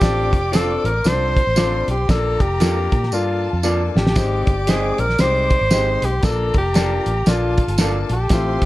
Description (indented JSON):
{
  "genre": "uptempo 1960s-style soul",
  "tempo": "116 BPM",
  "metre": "4/4",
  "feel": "swing 60% on 8ths",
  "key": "unclear",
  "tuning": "A4 = 441 Hz",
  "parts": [
    { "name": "breathy tenor saxophone", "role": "melody", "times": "0.0-8.7 s", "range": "F4 to C5", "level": "-21 LUFS", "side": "equal", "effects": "none" },
    { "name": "warm studio string section", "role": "second line", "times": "0.0-8.7 s", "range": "A4 to D6", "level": "-32 LUFS", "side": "left 4 dB", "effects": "tape echo" },
    { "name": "clear baby grand piano", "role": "accompaniment", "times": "0.0-8.6 s", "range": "Ab3 to E5", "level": "-25 LUFS", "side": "left 4 dB", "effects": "none" },
    { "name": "vintage muted fingered electric bass", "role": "bass", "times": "0.0-8.7 s", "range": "E1 to Bb2", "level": "-22 LUFS", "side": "equal", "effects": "none" },
    { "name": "cloth-damped thuddy drum kit", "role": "drums", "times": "0.0-8.7 s", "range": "hi-hat, kick drum, snare drum", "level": "-18 LUFS", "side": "equal", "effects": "none" },
    { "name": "tambourine", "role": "percussion", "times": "0.0-8.5 s", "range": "none", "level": "-30 LUFS", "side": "right 5 dB", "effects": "none" },
    { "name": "electric guitar through a small old amp", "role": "stabs", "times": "0.5-8.0 s", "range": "F4 to Eb5", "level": "-26 LUFS", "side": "right 4 dB", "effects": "none" }
  ],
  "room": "small room ambience",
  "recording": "dark, warm production",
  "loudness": "-16 LUFS",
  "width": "side -16 dB against mid",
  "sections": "0.0-8.7 A section",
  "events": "drum fill 3.1-4.2",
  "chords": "0.0 Dm7; 2.1 Bbmaj7; 4.2 Abmaj7; 6.2 Bbmaj7",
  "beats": "| 0.02 0.54 1.05 1.57 | 2.09 2.61 3.13 3.65 | 4.16 4.68 5.20 5.72 | 6.24 6.75 7.27 7.79 | 8.31"
}